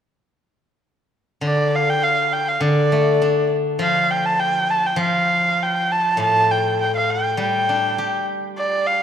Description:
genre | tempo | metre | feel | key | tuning
chinese traditional, Chinese chamber ensemble | 101 BPM | 2/4 | rubato | D yu mode | A4 = 441 Hz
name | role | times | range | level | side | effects
steel-string zither | accompaniment | 1.4-9.0 s | A2 to G4 | -21 LUFS | left 2 dB | none
rich erhu | melody | 1.5-9.0 s | D5 to A5 | -19 LUFS | right 2 dB | none
room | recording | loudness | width
moderate scoring stage reverb, RT60 1.9 s | dark, warm production | -17 LUFS | side -8 dB against mid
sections
1.4-9.0 A section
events
none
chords
none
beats
| 1.42 2.02 | 2.61 3.20 | 3.80 4.39 | 4.98 5.58 | 6.19 6.79 | 7.38 7.97 | 8.56

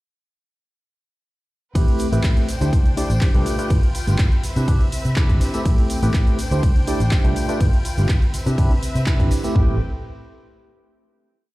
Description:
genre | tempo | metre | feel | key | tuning
filtered disco house | 123 BPM | 4/4 | straight | A minor | A4 = 439 Hz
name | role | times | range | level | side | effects
tine electric piano | accompaniment | 1.7-9.8 s | A3 to D5 | -26 LUFS | equal | medium tremolo, phaser, vintage 12-bit sampler grit, sidechain pumping
rich studio string section | sustained chords | 1.8-9.8 s | C4 to G5 | -32 LUFS | left 2 dB | sidechain pumping
fingered electric bass | bass | 1.8-9.8 s | G1 to C3 | -21 LUFS | equal | tube saturation, sidechain pumping
house drum kit | drums | 1.8-9.7 s | kick drum, toms | -18 LUFS | equal | none
punchy analog drum machine | drums | 1.8-9.5 s | handclaps, hi-hat, ride cymbal, shaker | -32 LUFS | right 1 dB | overdrive, sidechain pumping on hats, sidechain pumping on cymbals, sidechain pumping on perc
tambourine | percussion | 1.8-9.5 s | none | -41 LUFS | left 1 dB | sidechain pumping on perc
room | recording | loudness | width
little or no reverb | played on a big sound system in a bare room, large studio reverb | -16 LUFS | side -19 dB against mid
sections
1.8-9.6 drop; 9.6-11.5 final chord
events
drop 1.8-9.6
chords
1.8 Am9; 2.5 D7sus4; 3.5 G7; 4.4 Cmaj7; 5.7 Am9; 6.4 D7sus4; 7.4 G7; 8.3 Cmaj7; 9.6 Am9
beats
| 1.75 2.24 2.73 3.22 | 3.70 4.19 4.68 5.17 | 5.66 6.14 6.63 7.12 | 7.61 8.09 8.58 9.07 | 9.56

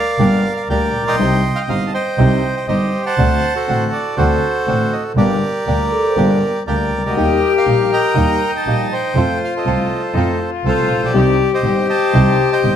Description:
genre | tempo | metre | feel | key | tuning
tango | 120 BPM | 4/4 | rubato | G minor | A4 = 440 Hz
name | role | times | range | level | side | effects
bandoneon | melody | 0.0-12.8 s | F#4 to C6 | -18 LUFS | right 2 dB | none
warm concert grand piano | accompaniment | 0.2-12.8 s | G1 to A4 | -20 LUFS | left 2 dB | none
bandoneon | stabs | 0.2-12.8 s | Bb3 to A4 | -26 LUFS | right 3 dB | none
dark double bass | bass | 0.2-12.8 s | G1 to F2 | -19 LUFS | right 2 dB | none
vibraphone with medium mallets | second line | 5.7-6.5 s | A4 to C5 | -21 LUFS | right 3 dB | none
rich cello | second line | 7.1-12.8 s | Eb4 to G4 | -18 LUFS | left 9 dB | none
room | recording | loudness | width
wet stone room reverb, RT60 1.1 s | band playing live in one room | -14 LUFS | side -9 dB against mid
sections
0.0-12.8 A section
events
none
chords
0.0 Gm; 1.2 Cm; 3.2 D7; 5.2 Gm; 7.2 Eb; 9.2 F; 11.1 Cm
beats
0.19 0.69 | 1.19 1.69 2.18 2.68 | 3.18 3.67 4.17 4.67 | 5.17 5.67 6.17 6.67 | 7.17 7.67 8.17 8.66 | 9.16 9.66 10.15 10.65 | 11.15 11.65 12.14 12.64

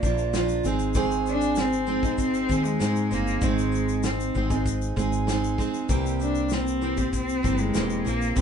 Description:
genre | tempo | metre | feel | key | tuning
acoustic pop | 97 BPM | 4/4 | straight | unclear | A4 = 440 Hz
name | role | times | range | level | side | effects
clear cello | melody | 0.0-8.4 s | Ab3 to D4 | -27 LUFS | left 3 dB | none
picked steel-string acoustic guitar | accompaniment | 0.0-8.4 s | Ab2 to Ab4 | -26 LUFS | right 4 dB | none
woody fretless electric bass | bass | 0.0-8.4 s | E1 to Ab2 | -29 LUFS | left 1 dB | none
natural country drum kit | drums | 0.0-8.4 s | kick drum, shaker, snare drum | -29 LUFS | left 1 dB | none
egg shaker | percussion | 0.0-8.4 s | none | -41 LUFS | left 8 dB | none
room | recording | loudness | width
moderate small room reverb, RT60 0.6 s | band playing live in one room, nothing above 10.6 kHz | -22 LUFS | side -7 dB against mid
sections
0.0-8.4 A section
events
none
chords
0.0 Bb; 0.6 Ab; 5.9 C7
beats
0.34 | 0.96 1.57 2.19 2.81 | 3.43 4.04 4.66 5.28 | 5.90 6.51 7.13 7.75 | 8.37

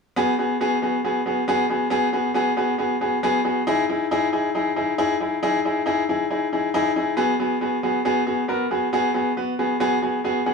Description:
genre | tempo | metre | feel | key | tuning
soul | 137 BPM | 4/4 | straight | G# minor | A4 = 441 Hz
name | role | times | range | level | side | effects
bright grand piano | solo | 0.2-10.5 s | B3 to B5 | -20 LUFS | left 1 dB | none
room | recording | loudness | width
moderate studio reverb, RT60 0.6 s | small room reverb | -20 LUFS | side -4 dB against mid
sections
0.2-7.2 A section; 7.2-10.5 B section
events
grand piano fill 6.5-7.2, 10.0-10.5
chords
0.2 G#m7; 3.7 Emaj7; 7.2 G#m7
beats
| 0.17 0.61 1.04 1.48 | 1.92 2.35 2.79 3.23 | 3.67 4.11 4.54 4.98 | 5.42 5.86 6.30 6.74 | 7.17 7.61 8.05 8.49 | 8.93 9.37 9.81 10.24

